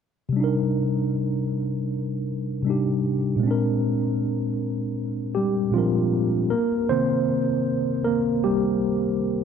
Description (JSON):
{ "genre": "hip hop", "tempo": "78 BPM", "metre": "4/4", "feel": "swing 63% on 16ths", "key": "C minor", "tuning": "A4 = 440 Hz", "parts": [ { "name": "mellow tine electric piano", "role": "solo", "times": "0.3-9.4 s", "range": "Bb2 to C5", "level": "-21 LUFS", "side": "equal", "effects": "medium stereo tremolo, low-pass filter, tape echo" } ], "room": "moderate plate reverb, RT60 3.6 s", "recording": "dark, warm production", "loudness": "-21 LUFS", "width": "side -7 dB against mid", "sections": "0.3-6.5 A section; 6.5-9.4 B section", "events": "tine electric piano solo 6.5-9.4", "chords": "0.3 Cm7; 3.4 Bb9; 6.5 Cm7", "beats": "| 0.35 1.12 1.89 2.66 | 3.43 4.20 4.96 5.73 | 6.50 7.27 8.04 8.81" }